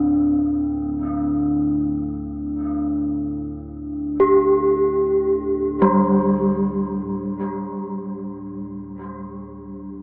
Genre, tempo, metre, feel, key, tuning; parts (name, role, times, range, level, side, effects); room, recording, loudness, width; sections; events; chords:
ambient; free time; A4 = 440 Hz
gamelan-type bronze metallophone; arpeggios; 0.0-10.0 s; G3 to G4; -20 LUFS; equal; diffuse ambient delay
deep rumbling drone; drone; 0.0-10.0 s; D2 to A2; -33 LUFS; equal; built-in reverb, phaser
bronze singing bowl; texture; 0.0-7.1 s; D4; -23 LUFS; equal
wet huge ambient reverb, RT60 8.9 s; worn, warbling old tape, cassette tape, warbly pitch drift, small speaker sound; -18 LUFS; side -35 dB against mid
0.0-7.1 A section; 7.1-10.0 B section
0.0 D5; 7.1 Dsus4